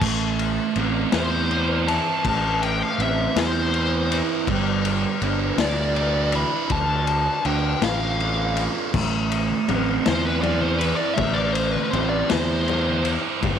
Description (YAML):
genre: psychedelic rock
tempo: 54 BPM (dotted quarters)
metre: 6/8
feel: straight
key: A minor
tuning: A4 = 438 Hz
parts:
  - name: thick fuzz guitar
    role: riff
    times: 0.0-13.6 s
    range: D3 to B4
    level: -26 LUFS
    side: right 13 dB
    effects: distortion, phaser
  - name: fuzz fingered electric bass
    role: bass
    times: 0.0-13.6 s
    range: G1 to E2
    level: -25 LUFS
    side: equal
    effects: overdrive
  - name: vintage drum kit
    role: drums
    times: 0.0-13.6 s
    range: crash cymbal, kick drum, ride cymbal, snare drum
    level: -26 LUFS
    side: left 7 dB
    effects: none
  - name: fuzz lead guitar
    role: melody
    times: 1.1-13.1 s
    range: B4 to B5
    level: -26 LUFS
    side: left 2 dB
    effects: wah, distortion, tape echo
  - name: congas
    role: percussion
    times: 8.9-13.6 s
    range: none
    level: -31 LUFS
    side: left 10 dB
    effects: none
room: light reverb, small room ambience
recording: 1960s-style stereo with parts hard left and right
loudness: -20 LUFS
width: side -8 dB against mid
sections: 0.0-13.6 A section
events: none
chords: 0.0 Amadd9; 4.5 G6; 6.7 Dm; 8.9 Amadd9